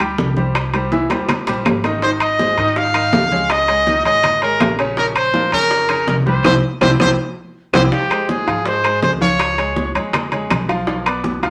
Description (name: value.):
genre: latin, salsa.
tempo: 163 BPM.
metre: 4/4.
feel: straight.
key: F minor.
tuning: A4 = 441 Hz.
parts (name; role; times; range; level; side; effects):
bright upright piano; accompaniment; 0.0-11.5 s; Db3 to G5; -24 LUFS; equal; none.
upright bass; bass; 0.0-11.5 s; Ab1 to Ab2; -26 LUFS; equal; none.
claves; percussion; 0.0-11.2 s; none; -31 LUFS; equal; none.
congas; percussion; 0.0-11.5 s; none; -28 LUFS; equal; none.
timbales; percussion; 0.0-11.5 s; none; -23 LUFS; equal; none.
bongos; percussion; 0.2-11.4 s; none; -26 LUFS; equal; none.
bright trumpet; melody; 2.0-9.9 s; G4 to F5; -19 LUFS; equal; none.
room: wet studio reverb, RT60 0.8 s.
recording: none.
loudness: -17 LUFS.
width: mono.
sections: 0.0-7.9 A section; 7.9-11.5 B section.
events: drum fill 1.1-2.0, 6.8-7.9; band accent 6.4-7.9.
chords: 0.0 G5; 0.6 C; 2.0 Ab5; 3.5 Dbsus2; 5.0 Bbm; 6.4 C; 7.9 Fmadd9; 9.4 Db; 10.9 Bdim.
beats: 0.18 | 0.55 0.92 1.29 1.66 | 2.02 2.39 2.76 3.13 | 3.50 3.87 4.23 4.60 | 4.97 5.34 5.71 6.08 | 6.45 6.82 7.18 7.55 | 7.92 8.29 8.66 9.03 | 9.40 9.77 10.14 10.51 | 10.88 11.25.